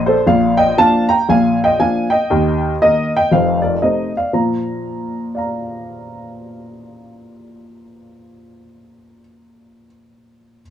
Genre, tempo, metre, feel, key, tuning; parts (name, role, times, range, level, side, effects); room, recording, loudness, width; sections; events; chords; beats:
jazz, stride piano; 118 BPM; 4/4; swing 59% on 8ths; Bb major; A4 = 440 Hz
warm upright piano; solo; 0.0-10.6 s; F1 to Bb5; -14 LUFS; equal
moderate studio reverb, RT60 0.6 s; band playing live in one room; -13 LUFS; side -10 dB against mid
0.0-4.3 A section; 4.3-8.4 B section
0.3 Bb; 2.3 Eb; 3.3 F7; 4.3 Bb
| 0.26 0.77 1.28 1.79 | 2.29 2.80 3.31 3.82 | 4.33 4.84 5.35 5.86 | 6.37 6.87 7.38 7.89